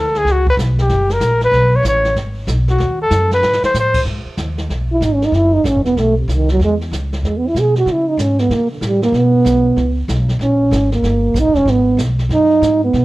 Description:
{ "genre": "jazz, small-group swing and bop", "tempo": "189 BPM", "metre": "4/4", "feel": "swing 63% on 8ths", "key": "G# minor from 4.1 s", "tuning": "A4 = 441 Hz", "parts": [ { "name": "mellow trumpet", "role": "melody", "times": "0.0-4.0 s", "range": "F#4 to C#5", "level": "-15 LUFS", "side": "left 1 dB", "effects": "plate reverb" }, { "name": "upright bass", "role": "bass", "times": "0.0-13.0 s", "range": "D#1 to C#3", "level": "-17 LUFS", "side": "equal", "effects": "none" }, { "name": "jazz brush drum kit", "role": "drums", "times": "0.1-13.0 s", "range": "brushed snare drum, crash cymbal, hi-hat, kick drum, snare drum", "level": "-26 LUFS", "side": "equal", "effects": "none" }, { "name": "breathy trombone", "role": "second line", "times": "4.9-13.0 s", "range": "C3 to G#4", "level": "-14 LUFS", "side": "right 2 dB", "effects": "none" } ], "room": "light reverb", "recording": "worn, warbling old tape, cassette tape, warbly pitch drift", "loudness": "-13 LUFS", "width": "side -18 dB against mid", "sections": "0.0-4.1 A section; 4.1-13.0 A section", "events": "trumpet solo 0.0-4.1; drum fill 3.4-3.7; trombone solo 4.1-13.0", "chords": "0.3 Bsus2; 0.9 F#; 1.5 Bsus2; 2.8 D#dim; 3.4 G#; 4.1 G#m; 5.3 F#m7; 6.0 B7b9; 6.6 E5; 7.9 C#5; 8.5 A#maj13; 9.1 Bsus2; 10.4 G#sus24; 11.0 D#; 11.7 G#m7" }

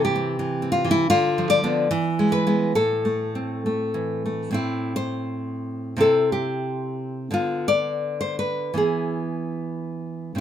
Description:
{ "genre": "romantic piece for solo classical guitar", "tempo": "64-93 BPM", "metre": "2/4", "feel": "rubato", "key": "A minor", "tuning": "A4 = 441 Hz", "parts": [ { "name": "nylon-string guitar", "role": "solo", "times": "0.0-10.4 s", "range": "A2 to D5", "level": "-21 LUFS", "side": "equal", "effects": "none" } ], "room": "light reverb", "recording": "minimal, uncompressed stereo recording", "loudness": "-21 LUFS", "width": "side -10 dB against mid", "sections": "0.0-4.5 A section; 4.5-10.4 B section", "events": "none", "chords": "0.0 C; 1.1 Bdim/D; 1.9 E7; 2.7 Am; 6.0 C; 7.3 Dm6; 8.8 E" }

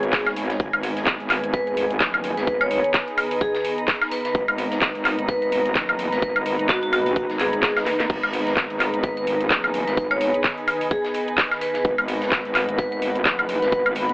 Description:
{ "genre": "bass house", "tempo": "128 BPM", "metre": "4/4", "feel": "swing 57% on 16ths", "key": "G# minor", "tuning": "A4 = 440 Hz", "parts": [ { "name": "vibraphone with hard mallets", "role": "melody", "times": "0.0-13.8 s", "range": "F#4 to C#5", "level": "-26 LUFS", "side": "equal", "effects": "dub echo" }, { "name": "sweeping resonant pad", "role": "sustained chords", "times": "0.0-14.1 s", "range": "D#3 to C#5", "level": "-30 LUFS", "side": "equal", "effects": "chorus, sidechain pumping" }, { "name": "metallic wobble bass", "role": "bass", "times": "0.0-14.1 s", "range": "F#1 to B1", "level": "-28 LUFS", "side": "equal", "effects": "chorus, overdrive, sidechain pumping" }, { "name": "garage drum kit", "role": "drums", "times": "0.0-14.1 s", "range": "crash cymbal, handclaps, hi-hat, shaker, snare drum, woodblock", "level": "-22 LUFS", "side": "equal", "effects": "none" }, { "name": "granular cloud pad", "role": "texture", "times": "0.0-14.1 s", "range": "D#4 to A#5", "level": "-27 LUFS", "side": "equal", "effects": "built-in reverb, sidechain pumping" }, { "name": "big rock drum kit", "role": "drums", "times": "0.1-14.1 s", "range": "hi-hat, snare drum", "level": "-38 LUFS", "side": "equal", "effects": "none" }, { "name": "electronic kick drum", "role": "drums", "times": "0.1-13.8 s", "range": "none", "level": "-23 LUFS", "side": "equal", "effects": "none" } ], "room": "moderate plate reverb, RT60 1.7 s, digital ambience", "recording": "telephone sound", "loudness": "-19 LUFS", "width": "side -24 dB against mid", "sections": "0.0-14.1 A section", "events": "drum fill 7.9", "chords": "0.0 G#m" }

